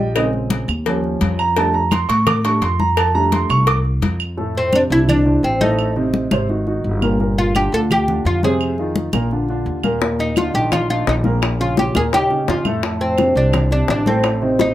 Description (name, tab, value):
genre	Afro-Cuban jazz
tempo	170 BPM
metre	4/4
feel	straight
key	F major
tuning	A4 = 440 Hz
part	warm baby grand piano	accompaniment	0.0-14.7 s	A2 to D6	-20 LUFS	right 2 dB	none
part	upright bass	bass	0.0-14.7 s	G1 to A2	-20 LUFS	equal	none
part	claves	percussion	0.2-14.4 s	none	-28 LUFS	right 6 dB	none
part	congas	percussion	0.2-14.7 s	none	-24 LUFS	left 2 dB	none
part	cowbell and bongos	percussion	0.2-4.2, 10.0-14.7 s	none	-23 LUFS	left 6 dB	none
part	oud	melody	4.6-14.7 s	C4 to A4	-18 LUFS	equal	none
room	moderate club reverb, RT60 0.5 s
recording	none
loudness	-15 LUFS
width	side -13 dB against mid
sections	0.0-4.4 A section; 4.4-14.7 B section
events	grand piano solo 0.0-4.4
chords	0.2 Bbm7; 0.9 Eb9; 1.6 F69; 4.4 F6; 5.8 Adim; 6.5 Absus2; 7.2 Gm7; 8.6 Fm7; 9.3 Bb; 10.0 Eb5; 11.4 Bbm; 12.1 Eb9; 12.8 F6; 14.2 Adim